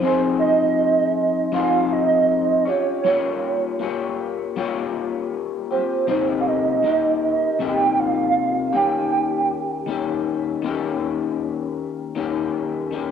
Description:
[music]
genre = indie pop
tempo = 79 BPM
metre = 4/4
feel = straight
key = unclear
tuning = A4 = 444 Hz
[part]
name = hollow clarinet-like synth lead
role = melody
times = 0.0-9.9 s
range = C5 to G5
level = -20 LUFS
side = right 6 dB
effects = ensemble chorus, analog delay
[part]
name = electric guitar through a small old amp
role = accompaniment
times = 0.0-13.1 s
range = C3 to Db5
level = -22 LUFS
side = left 8 dB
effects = analog chorus, vibrato effect, cassette tape
[sound]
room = moderate lush hall reverb, RT60 2.6 s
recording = home recording on cassette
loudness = -19 LUFS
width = side -7 dB against mid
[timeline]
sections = 0.0-12.2 A section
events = none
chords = 0.0 Fm7; 2.7 Gm7b5; 6.1 Cm7; 8.7 Eb7

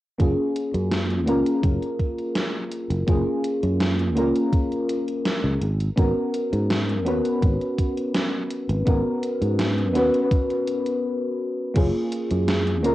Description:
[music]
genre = vaporwave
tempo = 83 BPM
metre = 4/4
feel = straight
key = F# major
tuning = A4 = 439 Hz
[part]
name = mellow FM electric piano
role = accompaniment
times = 0.2-12.9 s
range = A#3 to B4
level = -23 LUFS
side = equal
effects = lush chorus, tape echo
[part]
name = sustaining fretless electric bass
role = bass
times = 0.2-12.9 s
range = F#1 to G#2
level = -24 LUFS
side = equal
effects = none
[part]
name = electronic kick drum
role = drums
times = 0.2-11.9 s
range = none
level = -21 LUFS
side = equal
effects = overdrive, cassette tape
[part]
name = gated 80s digital drum machine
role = drums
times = 0.2-12.9 s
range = crash cymbal, hi-hat, snare drum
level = -28 LUFS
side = equal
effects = gated reverb, gated reverb snare, overdrive, cassette tape
[sound]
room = moderate booth ambience, RT60 0.2 s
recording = home recording on cassette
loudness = -21 LUFS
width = side -15 dB against mid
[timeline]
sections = 0.2-11.8 A section; 11.8-12.9 B section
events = stop 11.0-11.8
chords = 0.2 F#maj9; 5.6 G#m11; 11.8 F#maj9

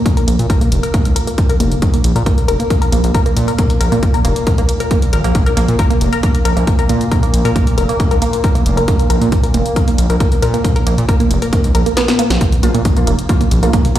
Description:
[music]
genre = driving peak-time techno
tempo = 136 BPM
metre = 4/4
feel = straight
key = unclear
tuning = A4 = 440 Hz
[part]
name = tight sequenced synth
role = riff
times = 0.0-14.0 s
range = Bb3 to Bb4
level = -19 LUFS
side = right 1 dB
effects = chorus, phaser, sidechain pumping, tape echo
[part]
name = analog drone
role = drone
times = 0.0-14.0 s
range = Bb2 to Bb3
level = -22 LUFS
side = equal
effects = chorus, sidechain pumping
[part]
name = gritty driven synth bass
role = bass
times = 0.1-14.0 s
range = F1 to Bb2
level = -16 LUFS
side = equal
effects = sidechain pumping
[part]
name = electronic kick drum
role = drums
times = 0.1-13.8 s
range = none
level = -14 LUFS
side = equal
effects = none
[part]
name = punchy analog drum machine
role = drums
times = 0.1-14.0 s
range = hi-hat, snare drum, toms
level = -25 LUFS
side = equal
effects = overdrive, sidechain pumping on hats, sidechain pumping on toms
[part]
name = rave stab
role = stabs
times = 12.6-14.0 s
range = F3 to F4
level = -20 LUFS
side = right 1 dB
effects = chorus, built-in reverb, sidechain pumping, ping-pong delay
[sound]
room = light reverb, digital ambience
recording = played on a big sound system in a bare room, large studio reverb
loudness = -12 LUFS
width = side -12 dB against mid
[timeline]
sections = 0.0-14.0 A section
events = kick drops out 12.0-12.4; drum fill 12.0-12.4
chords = 0.0 Bb5

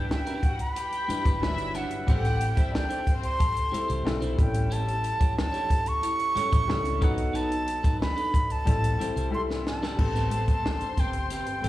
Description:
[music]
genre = lush 1970s-style soul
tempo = 91 BPM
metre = 4/4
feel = straight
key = A dorian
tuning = A4 = 440 Hz
[part]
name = breathy concert flute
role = melody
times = 0.0-11.7 s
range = F#5 to C#6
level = -30 LUFS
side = right 1 dB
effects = slapback echo
[part]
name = warm studio string section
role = second line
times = 0.0-3.7, 10.0-11.7 s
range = C4 to C6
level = -38 LUFS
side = left 3 dB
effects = slapback echo
[part]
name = clear concert grand piano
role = accompaniment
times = 0.0-11.7 s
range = F#3 to B4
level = -34 LUFS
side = left 4 dB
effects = slapback echo
[part]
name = electric guitar at the edge of break-up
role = riff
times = 0.0-11.7 s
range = C4 to D5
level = -37 LUFS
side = right 3 dB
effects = slapback echo
[part]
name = small celesta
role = texture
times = 0.0-11.7 s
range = E4 to A5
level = -45 LUFS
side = equal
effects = none
[part]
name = compact cocktail drum kit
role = drums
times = 0.1-11.7 s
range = crash cymbal, hi-hat, kick drum, snare drum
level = -26 LUFS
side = equal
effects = none
[part]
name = vintage muted fingered electric bass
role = bass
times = 1.1-11.7 s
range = G1 to C#2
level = -29 LUFS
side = equal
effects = none
[sound]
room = little or no reverb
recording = live gig heard through the venue's PA, club reverb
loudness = -24 LUFS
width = side -15 dB against mid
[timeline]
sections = 0.0-10.0 A section; 10.0-11.7 B section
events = drum fill 9.3-10.0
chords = 0.0 Em7; 2.1 Am7; 4.4 A7; 7.0 B7; 8.7 Am7; 10.0 Am9

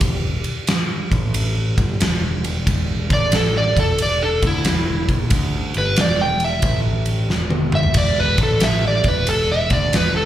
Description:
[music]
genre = blues rock power trio and southern rock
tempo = 91 BPM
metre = 4/4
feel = swing 66% on 8ths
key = E minor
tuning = A4 = 440 Hz
[part]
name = overdriven picked electric bass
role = bass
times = 0.0-10.3 s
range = E1 to D2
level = -22 LUFS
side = equal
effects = none
[part]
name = huge arena drum kit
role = drums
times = 0.0-10.1 s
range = crash cymbal, kick drum, ride cymbal, snare drum, toms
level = -20 LUFS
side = equal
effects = none
[part]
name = overdriven slide guitar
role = melody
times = 3.1-10.3 s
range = E4 to G5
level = -21 LUFS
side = right 1 dB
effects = slapback echo, analog delay
[sound]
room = light reverb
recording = live gig heard through the venue's PA, club reverb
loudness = -16 LUFS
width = side -12 dB against mid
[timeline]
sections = 0.0-10.3 A section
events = electric slide guitar solo 0.0-10.3; drum fill 7.3-8.0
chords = 0.0 N.C.; 1.7 Em; 3.0 Asus4; 3.7 N.C.; 6.6 A5; 7.3 E5; 8.3 A5; 8.9 E7sus4

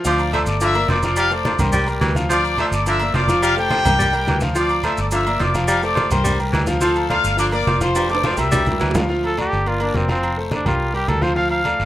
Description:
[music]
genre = latin, salsa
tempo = 212 BPM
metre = 4/4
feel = straight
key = D minor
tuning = A4 = 440 Hz
[part]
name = clear trumpet section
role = melody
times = 0.0-8.9 s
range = G4 to E6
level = -21 LUFS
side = left 2 dB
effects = none
[part]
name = bright concert grand piano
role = accompaniment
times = 0.0-11.9 s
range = F3 to F5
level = -23 LUFS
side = left 1 dB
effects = none
[part]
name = maracas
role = percussion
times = 0.0-9.1 s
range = none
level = -34 LUFS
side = right 2 dB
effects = none
[part]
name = clear baritone saxophone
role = second line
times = 0.1-9.0 s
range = D3 to G3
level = -24 LUFS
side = equal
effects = none
[part]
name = vintage muted fingered electric bass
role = bass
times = 0.1-11.9 s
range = F1 to D2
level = -23 LUFS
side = equal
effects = none
[part]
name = congas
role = percussion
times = 0.1-11.9 s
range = none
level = -25 LUFS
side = equal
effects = none
[part]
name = guiro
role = percussion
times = 0.1-11.9 s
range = none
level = -35 LUFS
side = left 1 dB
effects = none
[part]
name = agogo bells and timbales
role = percussion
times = 0.2-11.8 s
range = none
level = -28 LUFS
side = right 3 dB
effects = none
[part]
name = warm trumpet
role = melody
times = 9.3-11.9 s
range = C4 to F5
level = -22 LUFS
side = equal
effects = none
[sound]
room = light reverb, studio ambience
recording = rough home demo mix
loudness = -16 LUFS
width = side -14 dB against mid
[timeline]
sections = 0.0-9.1 A section; 9.1-11.9 B section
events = drum fill 8.0-9.1; trumpet solo 9.1-11.9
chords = 0.0 Dm; 0.6 Gm7; 1.2 Fadd9; 1.7 C7; 2.3 Dm; 2.9 Gm7; 3.4 Fadd9; 4.0 C7; 4.6 Dm; 5.1 Gm7; 5.7 Fadd9; 6.3 C7; 6.8 Dm; 7.4 Gm7; 8.0 Fadd9; 8.5 C7; 9.1 Dm; 9.7 Gm7; 10.2 Fadd9; 10.8 C5

